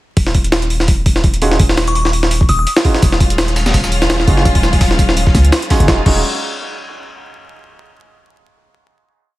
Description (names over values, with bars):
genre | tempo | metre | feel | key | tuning
drum and bass, jungle | 168 BPM | 4/4 | swing 55% on 16ths | Eb minor | A4 = 443 Hz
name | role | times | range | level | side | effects
long sustained 808-style bass | bass | 0.2-6.2 s | Eb1 to Db2 | -16 LUFS | equal | none
jungle sampler-style drum kit | drums | 0.2-6.1 s | crash cymbal, hi-hat, kick drum, snare drum | -14 LUFS | equal | overdrive, small room ambience
warm grand piano | stabs | 1.4-6.2 s | Db4 to Ab4 | -22 LUFS | right 3 dB | dub echo
glassy synth bell | melody | 1.9-2.6 s | Db6 to Eb6 | -22 LUFS | left 2 dB | chorus, dub echo
warm studio string section | sustained chords | 3.0-6.1 s | Gb3 to F4 | -21 LUFS | left 2 dB | none
breakbeat sampler-style drum kit | drums | 3.0-5.8 s | hi-hat, snare drum, tambourine | -25 LUFS | right 1 dB | high-pass filter on perc, small room ambience, high-pass filter on hats, high-pass filter on snare
room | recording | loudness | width
light reverb, digital ambience | dense, heavily limited modern master, vinyl crackle | -11 LUFS | side -17 dB against mid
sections
0.2-5.9 drop; 5.9-7.3 final chord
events
drop 0.2-5.9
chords
0.2 Ebm11